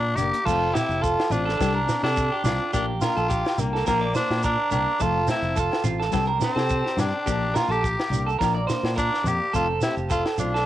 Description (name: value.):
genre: highlife guitar band.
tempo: 106 BPM.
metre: 4/4.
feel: swing 54% on 16ths.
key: F major.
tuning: A4 = 438 Hz.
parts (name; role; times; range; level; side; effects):
raspy tenor saxophone; melody; 0.0-10.7 s; Bb3 to G4; -26 LUFS; left 2 dB; cassette tape.
combo organ; sustained chords; 0.0-10.7 s; C5 to C6; -39 LUFS; equal; none.
fingered electric bass; bass; 0.0-10.6 s; F1 to C3; -28 LUFS; left 1 dB; none.
nylon-string guitar; accompaniment; 0.2-10.6 s; F3 to D4; -32 LUFS; left 8 dB; cassette tape.
tight funk drum kit; drums; 0.2-10.6 s; crash cymbal, hi-hat, kick drum, snare drum; -30 LUFS; left 1 dB; none.
agogo bells; percussion; 0.2-10.4 s; none; -38 LUFS; left 8 dB; none.
shekere; percussion; 0.2-10.5 s; none; -30 LUFS; right 3 dB; none.
clean electric guitar; arpeggios; 0.5-10.7 s; C4 to D5; -26 LUFS; right 5 dB; cassette tape, tape echo.
room: light reverb.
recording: home recording on cassette.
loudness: -21 LUFS.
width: side -13 dB against mid.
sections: 0.5-10.7 A section.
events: none.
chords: 0.5 F; 1.6 Csus2; 2.7 Gm7/Bb; 3.9 Bb; 5.0 F; 6.1 Csus2; 7.3 Gm7/Bb; 8.4 Bb; 9.5 F.